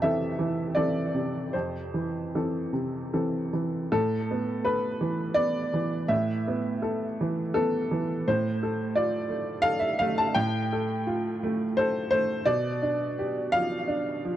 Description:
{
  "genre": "neoclassical minimalist piano",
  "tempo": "74-87 BPM",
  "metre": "3/4",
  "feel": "rubato",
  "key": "A minor",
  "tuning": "A4 = 442 Hz",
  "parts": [
    { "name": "clear upright piano", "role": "solo", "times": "0.0-14.4 s", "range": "F2 to A5", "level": "-25 LUFS", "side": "equal", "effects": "tape echo" }
  ],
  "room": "light reverb",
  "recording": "dry, close 1970s-style studio recording",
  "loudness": "-25 LUFS",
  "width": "side -12 dB against mid",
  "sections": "0.0-3.9 A section; 3.9-14.4 B section",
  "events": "none",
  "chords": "0.0 Fmaj7; 3.9 Asus2; 8.3 F/A; 12.5 G7/B",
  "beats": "0.00 0.75 | 1.53 2.33 3.14 | 3.92 4.65 5.37 | 6.10 6.82 7.54 | 8.26 8.96 9.65 | 10.36 11.08 11.79 | 12.48 13.18 13.89"
}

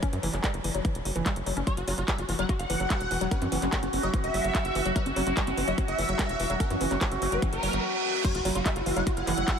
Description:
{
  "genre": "psychedelic trance",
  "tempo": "146 BPM",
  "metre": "4/4",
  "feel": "straight",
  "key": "unclear",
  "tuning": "A4 = 445 Hz",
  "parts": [
    { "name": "woody wave-folded pluck", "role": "riff", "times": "0.0-9.6 s", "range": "E3 to F#4", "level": "-33 LUFS", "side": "moving between left 5 dB and right 4 dB", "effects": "chorus, auto-pan, sidechain pumping, diffuse ambient delay" },
    { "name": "drum and bass drum kit", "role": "drums", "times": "0.0-9.6 s", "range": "crash cymbal, handclaps, hi-hat", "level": "-34 LUFS", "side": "equal", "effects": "none" },
    { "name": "electronic kick drum", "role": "drums", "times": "0.0-9.6 s", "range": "none", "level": "-28 LUFS", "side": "equal", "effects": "none" },
    { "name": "tight sequencer bass", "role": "bass", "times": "0.1-9.4 s", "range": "E1 to F#2", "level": "-32 LUFS", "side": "equal", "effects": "tube saturation" },
    { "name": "swarming rave lead", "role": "melody", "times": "1.7-9.6 s", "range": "C#4 to F#5", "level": "-32 LUFS", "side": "equal", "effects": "chorus, phaser, sidechain pumping, diffuse ambient delay" },
    { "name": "overtone-sweeping drone", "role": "sustained chords", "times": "2.0-9.6 s", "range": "E4 to F#4", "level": "-32 LUFS", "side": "right 1 dB", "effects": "chorus, built-in reverb, sidechain pumping" },
    { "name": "reverse cymbal and sub drop", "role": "sound effects", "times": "7.6-9.6 s", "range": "none", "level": "-34 LUFS", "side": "right 4 dB", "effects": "none" }
  ],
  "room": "moderate huge ambient reverb, RT60 7.8 s",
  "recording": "dreamy mix soaked in reverb",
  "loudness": "-25 LUFS",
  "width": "side -7 dB against mid",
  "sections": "0.0-8.2 A section; 8.2-9.6 B section",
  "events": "reverse cymbal 7.6-8.2; drop 8.2-9.6; impact 8.2-9.6",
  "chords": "0.0 F#5",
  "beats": "| 0.03 0.44 0.85 1.26 | 1.67 2.08 2.49 2.90 | 3.31 3.73 4.14 4.55 | 4.96 5.37 5.78 6.19 | 6.60 7.01 7.42 7.83 | 8.24 8.66 9.07 9.48"
}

